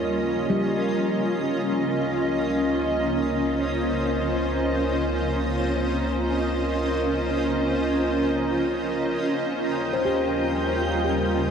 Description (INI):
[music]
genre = ambient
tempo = free time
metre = none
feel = none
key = unclear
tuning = A4 = 441 Hz
[part]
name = granular cloud pad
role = sustained chords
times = 0.0-11.5 s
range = G3 to Eb5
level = -23 LUFS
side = equal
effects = built-in reverb
[part]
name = warm sub bass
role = bass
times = 0.0-11.5 s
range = Db2 to Eb2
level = -32 LUFS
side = equal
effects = none
[part]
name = analog drone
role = drone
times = 0.0-11.5 s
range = Bb3 to Bb4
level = -31 LUFS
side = equal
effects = chorus
[part]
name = handpan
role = arpeggios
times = 0.5-3.4, 9.9-11.5 s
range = G3 to C5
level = -29 LUFS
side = left 1 dB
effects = ping-pong delay
[part]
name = twinkling granular texture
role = texture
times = 9.6-11.5 s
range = G5 to G6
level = -32 LUFS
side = left 2 dB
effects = built-in reverb
[sound]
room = wet huge ambient reverb, RT60 8.1 s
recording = dark, warm production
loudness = -22 LUFS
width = side -7 dB against mid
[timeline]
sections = 0.0-11.5 A section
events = fade-in on sub bass 0.0-11.5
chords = 0.0 Eb9; 1.2 Dbmaj9; 9.2 Eb9